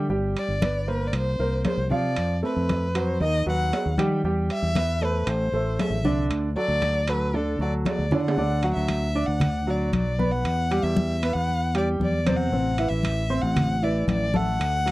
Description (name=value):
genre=latin, Cuban son and guajira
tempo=116 BPM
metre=4/4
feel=straight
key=unclear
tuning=A4 = 440 Hz
part: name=clear baby grand piano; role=arpeggios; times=0.0-14.9 s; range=C3 to D6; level=-27 LUFS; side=right 2 dB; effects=none
part: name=fingered electric bass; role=bass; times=0.0-14.9 s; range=G1 to D#3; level=-26 LUFS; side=equal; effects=none
part: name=congas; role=percussion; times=0.1-14.9 s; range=none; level=-28 LUFS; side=left 2 dB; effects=none
part: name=warm violin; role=melody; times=0.4-14.9 s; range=A4 to F#5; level=-28 LUFS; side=left 1 dB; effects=none
part: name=timbales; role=percussion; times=0.4-14.9 s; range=none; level=-32 LUFS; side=right 4 dB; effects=none
room=light reverb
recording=dry, close 1970s-style studio recording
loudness=-22 LUFS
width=side -18 dB against mid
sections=0.0-8.4 A section; 8.4-14.9 B section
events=drum fill 7.9-8.4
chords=0.1 G; 1.1 C9sus4; 2.2 F; 3.2 B/D#; 4.2 Em; 5.3 Am; 6.3 D; 10.5 Em; 12.5 Am